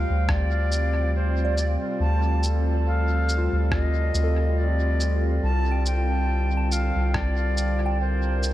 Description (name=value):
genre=ambient dub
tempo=70 BPM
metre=4/4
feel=swing 56% on 16ths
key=unclear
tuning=A4 = 441 Hz
part: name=silver concert flute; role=melody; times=0.0-8.5 s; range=C5 to A5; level=-30 LUFS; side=equal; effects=dub echo
part: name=warbly tape-like pad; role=sustained chords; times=0.0-8.5 s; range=C3 to Bb4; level=-30 LUFS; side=equal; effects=chorus, built-in reverb, vintage 12-bit sampler grit
part: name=soft synth bell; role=arpeggios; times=0.0-8.5 s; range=F4 to A5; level=-35 LUFS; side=right 1 dB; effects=chorus, phaser, dub echo
part: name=soft dub sub bass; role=bass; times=0.0-8.5 s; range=C2 to D2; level=-22 LUFS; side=equal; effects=none
part: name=electronic kick drum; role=drums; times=0.3-7.3 s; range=none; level=-28 LUFS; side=equal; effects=none
part: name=electronic rim click and shaker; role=drums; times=0.3-8.5 s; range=none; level=-32 LUFS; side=equal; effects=dub echo
room=light reverb, digital ambience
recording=none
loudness=-21 LUFS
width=side -14 dB against mid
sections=0.0-8.5 A section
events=none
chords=0.0 Dm7; 5.4 C7sus2